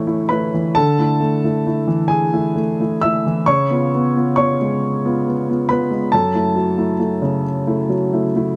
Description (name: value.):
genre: neoclassical minimalist piano.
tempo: 45 BPM (dotted quarters).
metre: 6/8.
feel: rubato.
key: unclear.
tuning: A4 = 440 Hz.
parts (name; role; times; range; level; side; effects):
warm upright piano; solo; 0.0-8.6 s; F#2 to E6; -18 LUFS; equal; none.
room: light reverb.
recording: close, detailed microphones.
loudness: -18 LUFS.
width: mono.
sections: 0.0-8.6 A section.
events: none.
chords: 0.0 A; 0.7 Dsus2; 3.5 C#7; 6.1 F#m7.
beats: | 0.75 2.11 | 3.46 4.80 | 6.13 7.45.